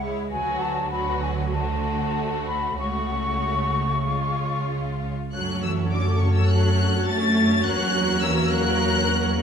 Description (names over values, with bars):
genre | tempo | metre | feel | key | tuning
classical | 93-106 BPM | 4/4 | straight | F# minor | A4 = 441 Hz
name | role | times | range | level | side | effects
warm symphonic violin section | melody | 0.0-9.4 s | B4 to A6 | -29 LUFS | left 3 dB | none
warm symphonic violin section | second line | 0.0-9.4 s | E4 to C#5 | -30 LUFS | left 3 dB | none
warm symphonic viola section | accompaniment | 0.0-9.4 s | F#3 to F#4 | -31 LUFS | right 1 dB | none
rich studio cello section | bass | 0.0-9.4 s | C#3 to A3 | -28 LUFS | right 2 dB | none
warm symphonic double bass section | bass | 0.0-9.4 s | C#2 to F#2 | -26 LUFS | right 1 dB | none
silver concert flute | second line | 0.3-4.7 s | G#5 to C#6 | -28 LUFS | left 2 dB | none
mellow French horn section | sustained chords | 5.3-9.4 s | A3 to F#4 | -29 LUFS | left 4 dB | none
room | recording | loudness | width
wet scoring stage reverb, RT60 1.5 s | minimal, uncompressed stereo recording | -21 LUFS | side -7 dB against mid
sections
0.0-5.3 A section; 5.3-9.4 B section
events
none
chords
0.3 Bm/D; 1.5 D7; 2.8 F#m/C#; 4.1 C#; 5.3 F#m; 7.7 F#7/E